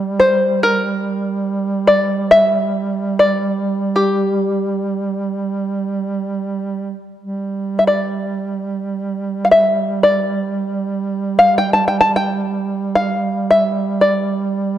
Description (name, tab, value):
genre	caucasian folk, Caucasian lament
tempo	free time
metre	none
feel	none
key	G dorian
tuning	A4 = 441 Hz
part	open-back banjo	melody	0.0-14.8 s	G4 to A5	-14 LUFS	left 2 dB	none
part	mellow duduk	drone	0.0-14.8 s	G3	-20 LUFS	right 4 dB	none
room	moderate concert hall reverb, RT60 2.0 s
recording	dark, warm production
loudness	-15 LUFS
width	side -11 dB against mid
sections	0.0-7.2 A section; 7.2-14.8 A section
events	none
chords	none